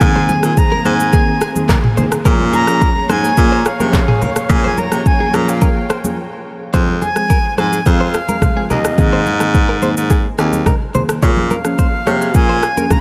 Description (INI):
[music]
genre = afrobeats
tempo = 107 BPM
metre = 4/4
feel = straight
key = unclear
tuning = A4 = 440 Hz
[part]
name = bright reedy concert flute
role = melody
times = 0.0-13.0 s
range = Eb5 to Bb5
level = -22 LUFS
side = equal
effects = tape echo
[part]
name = warm analog keys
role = accompaniment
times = 0.0-13.0 s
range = Eb3 to Ab4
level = -22 LUFS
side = equal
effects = chorus
[part]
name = muted studio string section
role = sustained chords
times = 0.0-6.7 s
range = Bb3 to G5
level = -28 LUFS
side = equal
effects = none
[part]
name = bright baritone saxophone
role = bass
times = 0.0-12.7 s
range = Eb2 to C3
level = -20 LUFS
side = equal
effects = none
[part]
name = afro-pop drum kit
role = drums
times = 0.0-13.0 s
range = handclaps, kick drum, rim click, shaker, toms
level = -18 LUFS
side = equal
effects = none
[part]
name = congas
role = percussion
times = 0.0-13.0 s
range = none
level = -25 LUFS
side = equal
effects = none
[part]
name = direct-recorded clean electric guitar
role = riff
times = 0.2-12.8 s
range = Ab4 to Db5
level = -27 LUFS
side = equal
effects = analog chorus, tape echo
[sound]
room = moderate cathedral reverb, RT60 5.3 s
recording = dreamy mix soaked in reverb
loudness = -14 LUFS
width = mono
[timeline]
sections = 0.0-6.7 A section; 6.7-13.0 B section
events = break 6.2-6.7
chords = 0.0 Abadd9; 2.3 Bbm7; 6.7 Fm; 9.0 Abadd9; 11.2 Bbm7